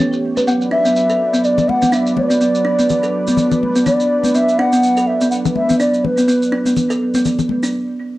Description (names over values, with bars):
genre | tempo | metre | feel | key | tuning
afro house | 124 BPM | 4/4 | swing 57% on 16ths | B minor | A4 = 440 Hz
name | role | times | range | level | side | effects
warm analog pad | sustained chords | 0.0-7.7 s | E3 to D5 | -23 LUFS | equal | chorus, cassette tape
kalimba | arpeggios | 0.0-7.7 s | B3 to B4 | -16 LUFS | right 1 dB | cassette tape, tape echo
shaker | drums | 0.1-7.7 s | none | -30 LUFS | right 1 dB | low-pass filter on perc, cassette tape, low-pass filter on room
congas | percussion | 0.4-7.6 s | none | -23 LUFS | left 6 dB | none
bright bass bansuri | melody | 0.5-6.8 s | B4 to F#5 | -17 LUFS | equal | cassette tape, tape echo
room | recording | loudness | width
wet small room reverb, RT60 0.6 s | home recording on cassette | -13 LUFS | side -17 dB against mid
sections
0.0-8.2 A section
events
stop 7.7-8.2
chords
0.5 Bm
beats
| 0.48 0.96 1.44 1.93 | 2.41 2.90 3.38 3.86 | 4.35 4.83 5.31 5.80 | 6.28 6.77 7.25